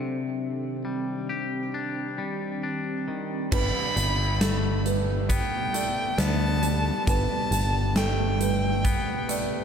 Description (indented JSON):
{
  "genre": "post-rock",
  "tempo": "68 BPM",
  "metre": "4/4",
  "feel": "straight",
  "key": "G major",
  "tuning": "A4 = 440 Hz",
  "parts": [
    { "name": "ethereal airy pad", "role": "sustained chords", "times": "0.0-9.6 s", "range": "Eb3 to B4", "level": "-33 LUFS", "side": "right 1 dB", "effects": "ensemble chorus, built-in reverb" },
    { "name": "twangy electric guitar", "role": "arpeggios", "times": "0.0-9.6 s", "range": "C3 to G4", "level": "-33 LUFS", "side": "left 4 dB", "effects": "tape echo" },
    { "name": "rich violin", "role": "melody", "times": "3.5-9.6 s", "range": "G5 to B5", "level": "-30 LUFS", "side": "equal", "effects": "tape echo" },
    { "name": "felt-muted upright piano", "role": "arpeggios", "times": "3.5-9.6 s", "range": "A4 to D5", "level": "-34 LUFS", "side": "right 6 dB", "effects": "tape echo" },
    { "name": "picked electric bass", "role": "bass", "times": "3.5-8.9 s", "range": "G1 to D2", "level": "-26 LUFS", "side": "equal", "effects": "none" },
    { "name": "huge arena drum kit", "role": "drums", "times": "3.5-9.5 s", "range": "crash cymbal, hi-hat, kick drum, snare drum", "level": "-27 LUFS", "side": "equal", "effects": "none" }
  ],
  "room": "light reverb, small room ambience",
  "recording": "faint mains hum",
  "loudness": "-24 LUFS",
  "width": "side -7 dB against mid",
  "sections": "0.0-3.5 A section; 3.5-9.6 B section",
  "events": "none",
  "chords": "0.0 Cmadd9; 3.5 Gadd9"
}